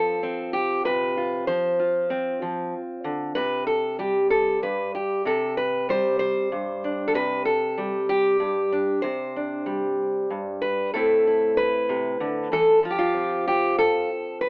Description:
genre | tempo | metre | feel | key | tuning
folk, solo fingerstyle acoustic guitar | 64 BPM (dotted quarters) | 6/8 | straight | C major | A4 = 440 Hz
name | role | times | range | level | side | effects
fingerpicked steel-string acoustic guitar | solo | 0.0-14.5 s | G2 to C5 | -21 LUFS | equal | none
room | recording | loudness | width
light reverb | telephone sound | -21 LUFS | side -31 dB against mid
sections
0.0-10.9 A section; 10.9-14.5 B section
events
none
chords
0.0 F; 3.4 Csus2; 10.9 Am; 12.8 F

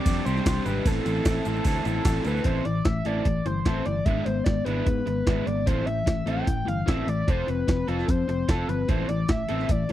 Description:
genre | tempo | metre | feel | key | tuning
indie rock | 149 BPM | 4/4 | straight | A minor | A4 = 439 Hz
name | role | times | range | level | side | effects
overdriven synth lead | melody | 0.0-9.9 s | A4 to G5 | -31 LUFS | equal | distortion, slapback echo
crunchy overdriven guitar | riff | 0.0-9.9 s | A2 to A4 | -32 LUFS | right 7 dB | wide subtle chorus
overdriven electric guitar | riff | 0.0-9.9 s | A2 to A4 | -30 LUFS | left 9 dB | none
picked electric bass | bass | 0.1-9.8 s | F1 to G#2 | -28 LUFS | equal | none
jungle sampler-style drum kit | drums | 0.1-9.9 s | hi-hat, kick drum, ride cymbal, snare drum | -25 LUFS | equal | none
egg shaker | percussion | 0.1-2.4 s | none | -50 LUFS | left 9 dB | none
room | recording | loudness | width
little or no reverb | dry, close 1970s-style studio recording | -23 LUFS | side -13 dB against mid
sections
0.0-2.5 A section; 2.5-9.9 B section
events
none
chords
0.0 Csus2; 0.9 Am; 4.1 E7/G#; 5.7 Am; 7.3 F; 8.9 Am

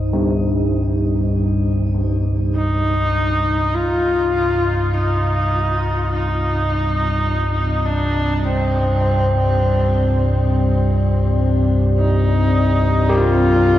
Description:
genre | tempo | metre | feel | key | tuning
dark ambient drone | 51 BPM | 4/4 | straight | C minor | A4 = 440 Hz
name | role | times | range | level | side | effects
deep dark ambient pad | sustained chords | 0.0-13.8 s | C4 to D5 | -25 LUFS | left 1 dB | chorus, built-in reverb, shimmer reverb
deep rumbling drone | drone | 0.0-13.8 s | C2 to G2 | -18 LUFS | equal | built-in reverb
bronze singing bowl | texture | 0.0-13.8 s | F4 to C5 | -43 LUFS | right 2 dB | none
carillon bells | arpeggios | 0.1-13.8 s | G2 to G4 | -25 LUFS | left 3 dB | ping-pong delay
clear horsehead fiddle | melody | 2.6-13.8 s | C4 to F4 | -20 LUFS | equal | shimmer reverb, ping-pong delay
room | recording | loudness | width
wet huge ambient reverb, RT60 8.2 s | worn, warbling old tape, cassette tape, warbly pitch drift | -15 LUFS | side -13 dB against mid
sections
0.0-3.7 A section; 3.7-13.8 B section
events
fade-in on ambient pad 3.7-13.8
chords
0.0 Cm

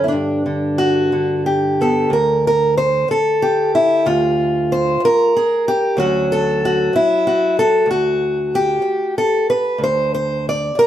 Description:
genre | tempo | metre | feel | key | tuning
folk, solo fingerstyle acoustic guitar | 62 BPM (dotted quarters) | 6/8 | rubato | unclear | A4 = 439 Hz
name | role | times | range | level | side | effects
fingerpicked acoustic archtop guitar | solo | 0.0-10.9 s | D2 to D5 | -14 LUFS | equal | none
room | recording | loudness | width
wet studio ambience, RT60 0.5 s | heard from further back in the room | -14 LUFS | side -11 dB against mid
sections
0.0-2.1 A section; 2.1-10.9 B section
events
none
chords
0.1 G; 2.1 N.C.; 6.0 F#m/D; 7.9 N.C.

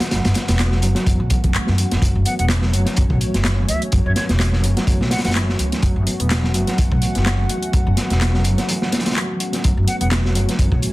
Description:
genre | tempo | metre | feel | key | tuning
breakbeat, breaks | 126 BPM | 4/4 | swing 56% on 16ths | unclear | A4 = 440 Hz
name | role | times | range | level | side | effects
dark analog pad | sustained chords | 0.0-10.9 s | A3 to F#5 | -28 LUFS | right 1 dB | chorus, sidechain pumping
mellow reed electric piano | riff | 0.0-10.9 s | E3 to B3 | -25 LUFS | equal | fast tremolo, vintage 12-bit sampler grit, digital delay
crunchy breakbeat drum kit | drums | 0.0-10.9 s | hi-hat, kick drum, snare drum | -20 LUFS | equal | none
house drum kit | drums | 0.0-10.9 s | handclaps, hi-hat | -27 LUFS | left 1 dB | none
upright bass | bass | 0.1-10.8 s | E1 to F#2 | -19 LUFS | equal | none
bright reedy wooden flute | melody | 2.3-5.3, 9.9-10.1 s | C#5 to F#5 | -27 LUFS | left 1 dB | telephone sound, digital delay
room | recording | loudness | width
light reverb | dense, heavily limited modern master, vinyl crackle | -16 LUFS | side -19 dB against mid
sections
0.0-10.9 A section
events
break 8.7-9.6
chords
0.0 F#m

